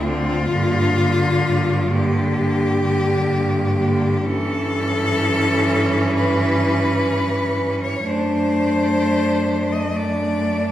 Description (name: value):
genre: classical, lyrical piece for cello ensemble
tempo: 64 BPM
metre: 4/4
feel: rubato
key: unclear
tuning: A4 = 440 Hz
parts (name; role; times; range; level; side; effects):
- rich cello; melody; 0.0-10.7 s; F4 to Eb5; -22 LUFS; left 2 dB; none
- rich cello; second line; 0.0-10.7 s; Bb3 to D4; -23 LUFS; right 2 dB; none
- clear cello; accompaniment; 0.0-10.7 s; D3 to A3; -23 LUFS; left 1 dB; none
- rich cello; bass; 0.0-10.7 s; D2 to G2; -23 LUFS; right 1 dB; none
room: wet recital hall reverb, RT60 1.6 s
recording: heard from further back in the room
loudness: -17 LUFS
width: side -12 dB against mid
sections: 0.0-10.7 A section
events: none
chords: 0.0 Dm7; 0.5 Gm; 4.2 A7/G; 8.1 D/F#